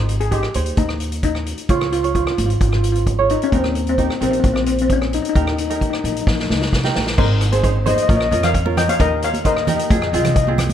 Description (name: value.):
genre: calypso.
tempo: 131 BPM.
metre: 4/4.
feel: straight.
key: Ab major.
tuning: A4 = 437 Hz.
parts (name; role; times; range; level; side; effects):
steel pan; melody; 0.0-10.5 s; C4 to G5; -20 LUFS; left 3 dB; none.
tenor ukulele; accompaniment; 0.0-10.7 s; C4 to Db5; -24 LUFS; right 7 dB; none.
upright bass; bass; 0.0-10.7 s; Ab1 to F2; -21 LUFS; equal; none.
vintage drum kit; drums; 0.1-10.7 s; crash cymbal, hi-hat, kick drum, rim click, snare drum; -21 LUFS; equal; none.
congas; percussion; 7.5-10.7 s; none; -24 LUFS; right 4 dB; none.
room: light reverb.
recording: none.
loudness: -15 LUFS.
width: side -10 dB against mid.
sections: 0.0-7.2 A section; 7.2-10.7 B section.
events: drum fill 6.3-7.2.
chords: 0.0 Abmaj7; 1.7 Db; 3.5 Eb; 7.2 Ab; 8.1 Bbm; 9.0 Eb; 9.9 Fm.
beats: 0.32 0.78 1.24 | 1.70 2.15 2.61 3.07 | 3.53 3.98 4.44 4.90 | 5.36 5.81 6.27 6.73 | 7.18 7.64 8.09 8.55 | 9.00 9.45 9.91 10.36.